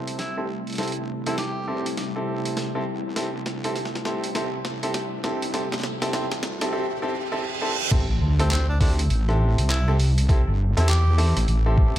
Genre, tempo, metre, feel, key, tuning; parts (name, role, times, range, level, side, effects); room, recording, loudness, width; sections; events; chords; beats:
glitch hop; 101 BPM; 4/4; swing 62% on 16ths; A minor pentatonic; A4 = 439 Hz
warm analog pad; sustained chords; 0.0-6.7 s; C3 to E4; -32 LUFS; equal; chorus, tremolo, sidechain pumping
bright grand piano; stabs; 0.0-12.0 s; C4 to A4; -28 LUFS; equal; sidechain pumping, low-pass filter, tape echo
wobble bass; bass; 0.0-12.0 s; G1 to E2; -24 LUFS; equal; chorus, high-pass filter
riser, reverse cymbal and impact; sound effects; 3.0-10.3 s; -33 LUFS; right 1 dB
boom bap sampler-style drum kit; drums; 0.1-12.0 s; crash cymbal, handclaps, hi-hat, rim click, snare drum; -31 LUFS; right 1 dB; high-pass filter on hats, high-pass filter on snare, high-pass filter on cymbals
breathy tenor saxophone; melody; 0.2-1.9, 8.4-11.4 s; C4 to G4; -33 LUFS; right 1 dB; low-pass filter, tape echo
electronic kick drum; drums; 7.9-11.9 s; -20 LUFS; equal
light reverb; echo-heavy mix; -21 LUFS; side -13 dB against mid
0.0-7.9 A section; 7.9-12.0 B section
build-up 0.0-7.9; drum fill 0.0-6.7; filter sweep on grand piano 0.0-7.9; filter sweep on analog synth pad 0.0-7.9; riser 3.0-7.9; reverse cymbal 6.7-7.9; drop 7.9-12.0; impact 7.9-10.3
0.0 Am7
0.19 | 0.79 1.38 1.97 2.57 | 3.16 3.76 4.35 4.95 | 5.54 6.13 6.73 7.32 | 7.92 8.51 9.10 9.70 | 10.29 10.88 11.48